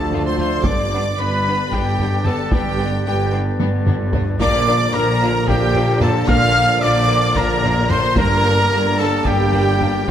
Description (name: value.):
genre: cinematic, epic orchestral film score.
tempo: 224 BPM (eighths).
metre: 7/8.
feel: straight.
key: unclear.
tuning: A4 = 442 Hz.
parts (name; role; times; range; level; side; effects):
rich symphonic violin section; melody; 0.0-10.1 s; G5 to F6; -26 LUFS; left 3 dB; none.
concert flute; second line; 0.0-10.1 s; G5 to F6; -25 LUFS; left 1 dB; none.
rich symphonic viola section; accompaniment; 0.0-10.1 s; G4 to F5; -24 LUFS; equal; none.
bright trombone section; sustained chords; 0.0-10.1 s; D3 to G3; -28 LUFS; right 5 dB; none.
dark woodwind section; sustained chords; 0.0-10.1 s; A3 to D5; -30 LUFS; left 1 dB; none.
mellow French horn section; sustained chords; 0.0-10.1 s; A3 to D4; -27 LUFS; left 4 dB; none.
clear trumpet; stabs; 0.0-10.1 s; G4 to F5; -22 LUFS; right 1 dB; none.
clear symphonic double bass section; bass; 0.0-10.1 s; G1 to D2; -23 LUFS; right 1 dB; none.
warm symphonic cello section; bass; 0.0-10.1 s; D2 to Bb2; -22 LUFS; equal; none.
rich chamber violin section; second line; 0.1-10.1 s; A3 to F4; -29 LUFS; left 2 dB; none.
taiko ensemble; drums; 0.1-10.1 s; none; -22 LUFS; equal; none.
room: wet recital hall reverb, RT60 1.7 s.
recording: none.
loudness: -15 LUFS.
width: side -10 dB against mid.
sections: 0.0-10.1 A section.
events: drum fill 3.6-4.4.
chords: 0.0 Dm; 0.7 G; 4.4 Bb; 8.2 Gm.